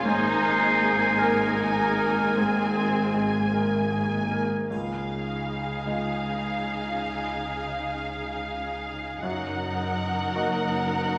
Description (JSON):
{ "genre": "cinematic, emotional film score for orchestra", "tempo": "52 BPM (dotted quarters)", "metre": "6/8", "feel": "rubato", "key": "Db major", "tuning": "A4 = 439 Hz", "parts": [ { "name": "rich symphonic violin section", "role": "melody", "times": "0.0-11.2 s", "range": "F5 to Ab5", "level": "-32 LUFS", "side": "equal", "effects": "none" }, { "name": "clear clarinet", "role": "second line", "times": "0.0-3.5 s", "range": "Ab4 to C5", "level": "-29 LUFS", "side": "equal", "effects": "none" }, { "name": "rich studio violin section", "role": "second line", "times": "0.0-11.2 s", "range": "C4 to Bb4", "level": "-34 LUFS", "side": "equal", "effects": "none" }, { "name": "clear baby grand piano", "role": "accompaniment", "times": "0.0-11.2 s", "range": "Db2 to Eb5", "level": "-31 LUFS", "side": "equal", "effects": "none" }, { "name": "rich studio viola section", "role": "accompaniment", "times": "0.0-11.2 s", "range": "Bb3 to Ab4", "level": "-36 LUFS", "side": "equal", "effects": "none" }, { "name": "rich studio cello section", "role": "bass", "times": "0.0-11.2 s", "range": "Gb2 to Db3", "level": "-37 LUFS", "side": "equal", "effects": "none" }, { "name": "rich studio double bass section", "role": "bass", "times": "0.0-11.2 s", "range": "Gb1 to Db2", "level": "-39 LUFS", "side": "equal", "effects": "none" }, { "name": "triangle", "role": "percussion", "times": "4.7-6.2 s", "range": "none", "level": "-66 LUFS", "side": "equal", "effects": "none" } ], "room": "wet scoring stage reverb, RT60 1.7 s", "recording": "none", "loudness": "-26 LUFS", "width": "mono", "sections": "0.0-4.7 A section; 4.7-11.2 B section", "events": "none", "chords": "0.1 Abadd9; 4.7 Dbadd9; 9.2 Gb6", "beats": "| 0.07 1.21 | 2.37 3.55 | 4.72 5.87 | 7.00 8.12 | 9.24 10.37" }